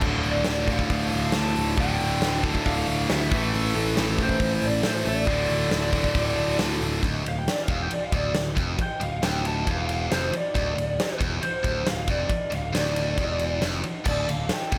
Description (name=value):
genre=hard rock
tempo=137 BPM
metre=4/4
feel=straight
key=D minor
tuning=A4 = 440 Hz
part: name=overdriven tonewheel organ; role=sustained chords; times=0.0-7.0, 14.0-14.8 s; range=A3 to F5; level=-41 LUFS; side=equal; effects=none
part: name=heavy high-gain guitar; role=riff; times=0.0-14.8 s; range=D2 to A3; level=-32 LUFS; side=equal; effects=distortion
part: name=tight distorted guitar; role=riff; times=0.0-7.0 s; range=D2 to A3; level=-30 LUFS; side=equal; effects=distortion
part: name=picked electric bass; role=bass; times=0.0-14.8 s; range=D1 to A2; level=-32 LUFS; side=equal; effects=none
part: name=big rock drum kit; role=drums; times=0.0-14.8 s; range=crash cymbal, hi-hat, kick drum, ride cymbal, snare drum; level=-30 LUFS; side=equal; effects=none
part: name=lead guitar through a small cranked amp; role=melody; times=0.3-14.8 s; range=A4 to A5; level=-32 LUFS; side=equal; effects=overdrive, slapback echo
room=little or no reverb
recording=none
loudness=-25 LUFS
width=mono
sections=0.0-7.0 A section; 7.0-14.8 B section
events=lead electric guitar solo 7.0-14.8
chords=0.0 Dm; 3.3 Am; 5.3 D5; 7.0 Dm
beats=| 0.03 0.47 0.91 1.34 | 1.78 2.22 2.66 3.09 | 3.53 3.97 4.41 4.84 | 5.28 5.72 6.16 6.59 | 7.03 7.47 7.91 8.35 | 8.79 9.23 9.67 10.11 | 10.55 10.99 11.43 11.87 | 12.31 12.75 13.19 13.63 | 14.07 14.51